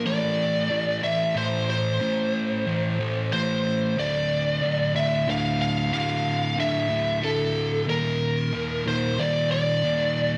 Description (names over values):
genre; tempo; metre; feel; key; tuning
rock; 92 BPM; 3/4; straight; D minor; A4 = 442 Hz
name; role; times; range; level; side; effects
fuzz guitar; riff; 0.0-10.4 s; D2 to A3; -28 LUFS; equal; distortion
lead guitar through a small cranked amp; melody; 0.1-10.4 s; A4 to F5; -27 LUFS; equal; overdrive, digital delay
room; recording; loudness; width
wet large studio reverb, RT60 1.4 s; none; -24 LUFS; mono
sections
0.0-10.4 A section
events
none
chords
0.1 Am; 4.0 Dm; 7.9 Eb5